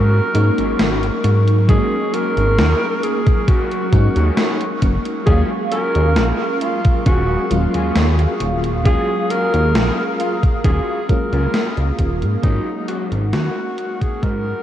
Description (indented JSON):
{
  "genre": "vaporwave",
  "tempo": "67 BPM",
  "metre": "4/4",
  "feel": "straight",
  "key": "Eb minor",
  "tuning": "A4 = 440 Hz",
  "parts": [
    { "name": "breathy alto saxophone", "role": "melody", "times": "0.0-14.6 s", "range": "Eb4 to Bb4", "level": "-22 LUFS", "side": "equal", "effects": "tape echo" },
    { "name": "FM electric piano with soft pad layer", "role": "accompaniment", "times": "0.0-14.6 s", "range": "Gb3 to F5", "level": "-24 LUFS", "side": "equal", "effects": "phaser, analog chorus, diffuse ambient delay" },
    { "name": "warbly tape-like pad", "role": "sustained chords", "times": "0.0-14.6 s", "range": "Ab4 to Eb6", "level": "-28 LUFS", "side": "equal", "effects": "chorus, built-in reverb" },
    { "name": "electric guitar at the edge of break-up", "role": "riff", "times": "0.0-14.6 s", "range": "Db4 to Db5", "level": "-29 LUFS", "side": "left 1 dB", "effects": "ensemble chorus, diffuse ambient delay" },
    { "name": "chorused synth bass", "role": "bass", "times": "0.0-14.5 s", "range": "Eb1 to Ab2", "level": "-17 LUFS", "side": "equal", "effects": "none" },
    { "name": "gated 80s digital drum machine", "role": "drums", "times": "0.3-14.4 s", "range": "hi-hat, snare drum", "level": "-24 LUFS", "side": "equal", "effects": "gated reverb, gated reverb snare, small room reverb" },
    { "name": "electronic kick drum", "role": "drums", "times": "1.7-14.4 s", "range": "none", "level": "-16 LUFS", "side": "equal", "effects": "small room reverb" }
  ],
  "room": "moderate huge ambient reverb, RT60 8.2 s",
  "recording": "dreamy mix soaked in reverb, cassette tape",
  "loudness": "-15 LUFS",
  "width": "side -11 dB against mid",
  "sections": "0.0-14.6 A section",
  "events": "fade-out 10.0-14.6",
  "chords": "0.0 Ab9sus4; 5.3 Ebm11; 12.4 Ab9sus4",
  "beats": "0.79 | 1.69 2.58 3.48 4.38 | 5.27 6.17 7.06 7.96 | 8.85 9.75 10.64 11.54 | 12.44 13.33 14.23"
}